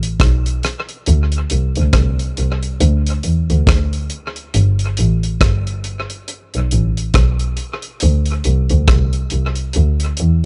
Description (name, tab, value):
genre	lovers rock reggae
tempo	69 BPM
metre	4/4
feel	swing 59% on 16ths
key	C major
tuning	A4 = 440 Hz
part	dark double bass	bass	0.0-10.4 s	G1 to E2	-17 LUFS	equal	none
part	damped 70s drum kit	drums	0.0-10.4 s	hi-hat, kick drum, rim click	-20 LUFS	equal	dub echo
room	little or no reverb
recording	nothing above 10.6 kHz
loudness	-17 LUFS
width	mono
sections	0.0-10.5 A section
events	none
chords	none